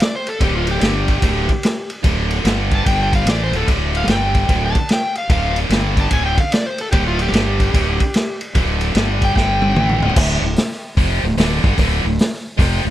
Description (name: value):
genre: blues rock power trio and southern rock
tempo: 148 BPM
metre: 4/4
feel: swing 65% on 8ths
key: D minor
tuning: A4 = 440 Hz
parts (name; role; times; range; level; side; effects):
- overdriven slide guitar; melody; 0.0-10.2 s; F4 to A5; -23 LUFS; left 1 dB; tape echo
- vintage drum kit; drums; 0.0-12.7 s; crash cymbal, hi-hat, kick drum, ride cymbal, snare drum, toms; -18 LUFS; equal; none
- tight distorted guitar; riff; 0.4-12.9 s; D2 to A3; -21 LUFS; right 1 dB; distortion
- fuzz fingered electric bass; bass; 0.4-12.9 s; D1 to A1; -19 LUFS; equal; overdrive
room: little or no reverb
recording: none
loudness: -15 LUFS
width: side -13 dB against mid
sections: 0.0-10.2 A section; 10.2-12.9 B section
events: drum fill 9.4-10.2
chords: 0.0 D5; 0.8 G5; 1.2 D5; 2.5 G5; 3.3 D5; 4.1 G5; 4.5 D5; 5.7 G5; 6.1 D5; 7.3 G5; 7.7 D5; 9.0 G5; 9.8 D5; 10.2 Dm